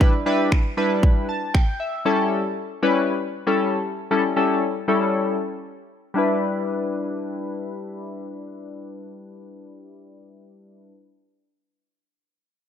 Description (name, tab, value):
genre	dance-pop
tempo	117 BPM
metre	4/4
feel	straight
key	E dorian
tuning	A4 = 440 Hz
part	chorused retro synth keys	accompaniment	0.0-11.0 s	G3 to A5	-22 LUFS	left 2 dB	sidechain pumping, low-pass filter
part	house drum kit	drums	0.0-1.7 s	finger snaps, kick drum	-18 LUFS	equal	none
room	light reverb, digital ambience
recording	none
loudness	-20 LUFS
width	side -9 dB against mid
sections	0.0-6.2 A section; 6.2-10.3 B section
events	synth keys fill 1.0-2.1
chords	0.0 Em7; 2.1 A7; 6.2 Em7